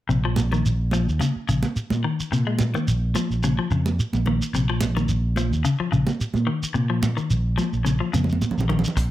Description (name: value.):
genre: afrobeat.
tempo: 108 BPM.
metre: 4/4.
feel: swing 54% on 16ths.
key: Bb minor.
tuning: A4 = 440 Hz.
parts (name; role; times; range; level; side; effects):
clean electric guitar; arpeggios; 0.1-9.0 s; C3 to Ab3; -25 LUFS; left 4 dB; none.
fingered electric bass; bass; 0.1-9.1 s; Bb1 to Bb2; -23 LUFS; equal; none.
shekere; percussion; 0.1-9.1 s; none; -27 LUFS; right 1 dB; none.
congas; percussion; 0.4-9.0 s; none; -27 LUFS; right 5 dB; none.
vintage drum kit; drums; 9.0-9.1 s; hi-hat, kick drum; -22 LUFS; equal; none.
room: moderate studio reverb, RT60 0.7 s.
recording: none.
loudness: -20 LUFS.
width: side -14 dB against mid.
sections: 0.1-9.1 A section.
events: drum fill 8.1-9.0.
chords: 0.1 Bbm.